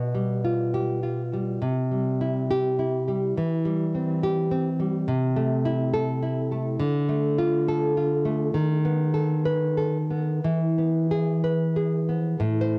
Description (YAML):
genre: romantic piece for solo classical guitar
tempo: 87-108 BPM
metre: 3/4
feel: rubato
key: C major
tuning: A4 = 436 Hz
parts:
  - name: nylon-string guitar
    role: solo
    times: 0.0-12.8 s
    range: A2 to C5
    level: -25 LUFS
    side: equal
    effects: cassette tape, tape echo
room: light reverb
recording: home recording on cassette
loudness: -25 LUFS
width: mono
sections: 0.0-12.4 A section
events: none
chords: 0.0 G7/B; 1.6 C; 3.4 C/E; 5.1 Am/C; 6.8 Dm; 8.5 B7/D#; 10.4 E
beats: 0.46 1.05 | 1.63 2.22 2.81 | 3.37 3.94 4.51 | 5.07 5.64 6.22 | 6.80 7.38 7.96 | 8.55 9.15 9.78 | 10.44 11.11 11.76 | 12.40